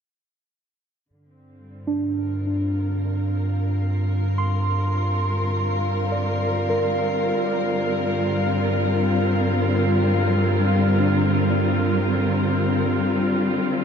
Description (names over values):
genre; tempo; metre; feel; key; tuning
ambient; free time; none; none; unclear; A4 = 440 Hz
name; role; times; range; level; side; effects
dark studio string section; sustained chords; 1.1-13.8 s; D3 to Bb4; -23 LUFS; equal; none
warm sub bass; bass; 1.1-13.8 s; F2 to G2; -24 LUFS; equal; none
drifting glass-harmonics texture; texture; 2.9-13.6 s; F4 to F5; -29 LUFS; left 2 dB; chorus, built-in reverb
muted felt-like synth keys; arpeggios; 1.9-13.6 s; D4 to C6; -28 LUFS; right 1 dB; chorus, ping-pong delay
room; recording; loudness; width
wet cathedral reverb, RT60 6.3 s; dark, warm production; -19 LUFS; side -7 dB against mid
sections
1.1-13.6 A section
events
fade-in on string section 1.1-13.6; fade-in on synth texture 1.1-13.6; fade-out on synth keys 1.1-13.6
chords
1.1 Bb69/G